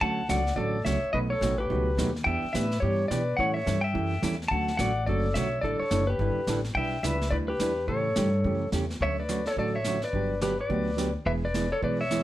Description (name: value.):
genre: country, western swing.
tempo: 213 BPM.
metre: 4/4.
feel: swing 61% on 8ths.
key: D major.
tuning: A4 = 442 Hz.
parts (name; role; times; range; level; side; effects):
pedal steel guitar; melody; 0.0-12.2 s; G4 to A5; -28 LUFS; left 1 dB; none.
hollow-body jazz guitar; accompaniment; 0.0-12.2 s; B2 to B4; -31 LUFS; right 4 dB; none.
upright bass; bass; 0.0-12.2 s; E1 to B2; -30 LUFS; left 1 dB; none.
vintage brush drum kit; drums; 0.0-12.2 s; brushed snare drum, hi-hat, kick drum, snare drum; -35 LUFS; equal; none.
room: moderate studio reverb, RT60 0.6 s.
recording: none.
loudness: -25 LUFS.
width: side -14 dB against mid.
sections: 0.0-9.0 A section; 9.0-12.2 B section.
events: none.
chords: 0.0 Dmaj7; 1.1 B7; 2.3 Em7; 3.4 A7; 4.5 Dmaj7; 5.6 A7sus4; 6.8 Em7; 7.9 A7; 9.0 Dmaj7; 10.1 Gmaj7; 11.3 E.